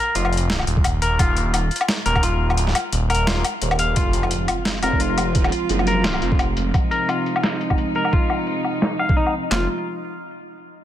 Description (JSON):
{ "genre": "half-time drum and bass", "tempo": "173 BPM", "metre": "4/4", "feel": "swing 56% on 16ths, half-time", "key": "F minor", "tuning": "A4 = 440 Hz", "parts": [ { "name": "twangy electric guitar", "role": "arpeggios", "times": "0.0-9.7 s", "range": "Eb4 to F5", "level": "-24 LUFS", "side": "left 2 dB", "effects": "low-pass filter, ping-pong delay" }, { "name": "phased detuned saw bass", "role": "bass", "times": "0.2-6.7, 9.5-9.7 s", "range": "Eb1 to Gb1", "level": "-21 LUFS", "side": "equal", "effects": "phaser" }, { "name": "boom bap sampler-style drum kit", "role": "drums", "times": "0.2-9.4 s", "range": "hi-hat, snare drum, woodblock", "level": "-24 LUFS", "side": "left 1 dB", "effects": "overdrive, low-pass filter on hats, low-pass filter on perc, low-pass filter on snare, low-pass filter on room" }, { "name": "boom bap sampler-style drum kit", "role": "drums", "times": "0.8-9.6 s", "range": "handclaps, kick drum, snare drum", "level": "-21 LUFS", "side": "equal", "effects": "overdrive" }, { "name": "warm studio cello section", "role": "sustained chords", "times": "4.0-9.7 s", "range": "C3 to F4", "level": "-26 LUFS", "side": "right 2 dB", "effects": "sidechain pumping, low-pass filter" }, { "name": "impact", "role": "sound effects", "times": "4.0-5.4 s", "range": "none", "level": "-31 LUFS", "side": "right 1 dB", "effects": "none" } ], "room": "light reverb", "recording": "none", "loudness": "-18 LUFS", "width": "side -12 dB against mid", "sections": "0.0-4.0 A section; 4.0-9.5 B section; 9.5-10.8 C section", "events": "drop 0.0-4.0; kick drops out 2.6-4.0; impact 4.0-5.4; filter sweep on drum 4.0-9.5", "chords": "0.0 Eb5; 4.0 Fm", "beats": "0.15 0.50 0.84 | 1.19 1.54 1.89 2.23 | 2.58 2.93 3.27 3.62 | 3.97 4.31 4.66 5.01 | 5.35 5.70 6.05 6.39 | 6.74 7.09 7.43 7.78 | 8.13 8.47 8.82 9.17 | 9.52" }